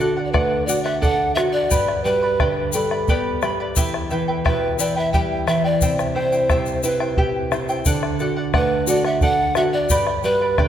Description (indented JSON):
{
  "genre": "andean folk, Andean ensemble",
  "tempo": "88 BPM",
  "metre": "3/4",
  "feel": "straight",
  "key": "unclear",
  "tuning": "A4 = 438 Hz",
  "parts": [
    { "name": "charango", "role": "accompaniment", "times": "0.0-10.7 s", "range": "E4 to B5", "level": "-25 LUFS", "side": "equal", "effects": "none" },
    { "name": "nylon-string guitar", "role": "accompaniment", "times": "0.0-10.7 s", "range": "E2 to A4", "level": "-24 LUFS", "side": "right 2 dB", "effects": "none" },
    { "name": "bombo", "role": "percussion", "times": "0.0-10.7 s", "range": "none", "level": "-23 LUFS", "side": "equal", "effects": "none" },
    { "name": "tube shaker", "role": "percussion", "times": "0.0-10.3 s", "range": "none", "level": "-30 LUFS", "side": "left 7 dB", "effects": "none" },
    { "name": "mellow hollow polished pan flute", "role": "melody", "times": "0.3-10.7 s", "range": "A4 to G5", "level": "-22 LUFS", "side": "equal", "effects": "tape echo" }
  ],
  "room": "wet concert hall reverb, RT60 1.8 s",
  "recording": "none",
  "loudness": "-17 LUFS",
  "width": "side -10 dB against mid",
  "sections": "0.0-10.7 A section",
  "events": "none",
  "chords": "0.0 D; 1.7 G; 3.8 Em; 5.8 C; 7.9 D; 9.9 G"
}